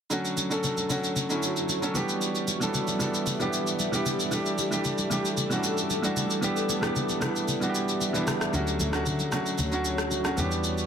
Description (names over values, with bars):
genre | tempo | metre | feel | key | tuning
amapiano | 114 BPM | 4/4 | straight | unclear | A4 = 441 Hz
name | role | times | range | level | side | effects
clear grand piano | accompaniment | 0.1-10.9 s | D3 to A4 | -28 LUFS | right 1 dB | none
granular cloud pad | sustained chords | 0.7-10.9 s | G3 to D6 | -34 LUFS | left 2 dB | built-in reverb
electronic shaker and rim click | drums | 0.1-10.9 s | none | -31 LUFS | equal | soft clipping on snare
congas | percussion | 0.4-10.5 s | none | -36 LUFS | left 4 dB | none
dark double bass | bass | 8.5-10.9 s | D2 to D3 | -31 LUFS | left 1 dB | none
room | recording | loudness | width
moderate plate reverb, RT60 1.7 s, small room ambience | dense, heavily limited modern master | -25 LUFS | side -7 dB against mid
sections
0.1-10.9 A section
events
none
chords
0.1 Dmaj7; 2.0 Em7; 4.3 A7sus4; 6.4 Em7; 8.5 Dmaj7